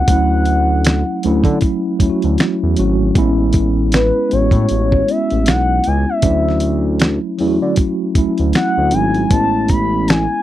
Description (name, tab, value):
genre	R&B, neo-soul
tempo	78 BPM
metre	4/4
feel	swing 58% on 16ths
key	unclear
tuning	A4 = 438 Hz
part	gliding portamento lead	melody	0.0-10.4 s	B4 to B5	-18 LUFS	left 2 dB	chorus
part	mellow tine electric piano	accompaniment	0.0-10.4 s	F#3 to F#4	-18 LUFS	equal	medium stereo tremolo
part	smooth synth bass	bass	0.0-10.3 s	G#1 to D3	-17 LUFS	equal	none
part	dusty soul sampler-style drum kit	drums	0.1-10.3 s	finger snaps, hi-hat, kick drum, snare drum	-16 LUFS	equal	none
room	little or no reverb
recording	dry, close 1970s-style studio recording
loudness	-13 LUFS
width	side -13 dB against mid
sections	0.0-10.4 A section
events	none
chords	0.1 Dmaj9; 3.2 Amaj9; 6.2 Dmaj9; 9.3 Amaj9